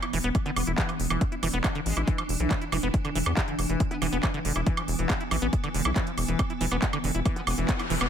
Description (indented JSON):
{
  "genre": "psychedelic trance",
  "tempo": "139 BPM",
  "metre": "4/4",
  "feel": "straight",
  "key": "unclear",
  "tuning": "A4 = 440 Hz",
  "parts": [
    { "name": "swarming drone", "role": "sustained chords", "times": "0.0-8.1 s", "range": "E3 to E4", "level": "-32 LUFS", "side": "equal", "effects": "built-in reverb, vintage 12-bit sampler grit, sidechain pumping" },
    { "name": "liquid acid bass", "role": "riff", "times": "0.0-8.1 s", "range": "D3 to E4", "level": "-32 LUFS", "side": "equal", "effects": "chorus, auto-pan, sidechain pumping, digital delay" },
    { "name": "techno drum kit", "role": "drums", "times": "0.0-8.1 s", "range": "handclaps, hi-hat, woodblock", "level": "-31 LUFS", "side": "right 2 dB", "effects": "overdrive" },
    { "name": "tight sequencer bass", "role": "bass", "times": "0.1-8.1 s", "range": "E1 to E2", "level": "-29 LUFS", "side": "equal", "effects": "none" },
    { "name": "electronic kick drum", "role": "drums", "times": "0.3-7.8 s", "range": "none", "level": "-27 LUFS", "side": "equal", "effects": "overdrive" },
    { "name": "metallic wobble bass", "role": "second line", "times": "0.5-4.4, 7.4-7.8 s", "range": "E3 to B3", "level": "-41 LUFS", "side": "left 4 dB", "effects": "chorus, sidechain pumping, high-pass filter, ping-pong delay" },
    { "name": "riser", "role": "sound effects", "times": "7.4-8.1 s", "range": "none", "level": "-34 LUFS", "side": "left 2 dB", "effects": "none" }
  ],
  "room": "little or no reverb",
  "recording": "none",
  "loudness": "-24 LUFS",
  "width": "side -9 dB against mid",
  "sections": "0.0-8.1 A section",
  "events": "riser 7.4-8.1",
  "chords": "0.0 E5"
}